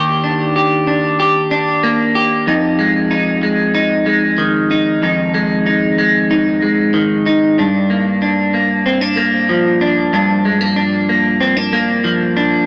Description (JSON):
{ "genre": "dream pop", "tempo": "94 BPM", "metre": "4/4", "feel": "straight", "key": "unclear", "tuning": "A4 = 440 Hz", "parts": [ { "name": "clean electric guitar", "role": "solo", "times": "0.0-12.7 s", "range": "F2 to G4", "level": "-12 LUFS", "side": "equal", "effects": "lush chorus, analog delay" } ], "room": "light reverb", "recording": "dry, gritty hardware recording, cassette tape, small speaker sound", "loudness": "-12 LUFS", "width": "side -38 dB against mid", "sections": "0.0-12.7 A section", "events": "none", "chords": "0.0 Ebmaj7; 2.5 Fm7; 7.6 Gm7", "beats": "0.56 1.19 1.83 | 2.47 3.11 3.75 4.38 | 5.02 5.66 6.30 6.94 | 7.58 8.21 8.85 9.49 | 10.13 10.77 11.41 12.04" }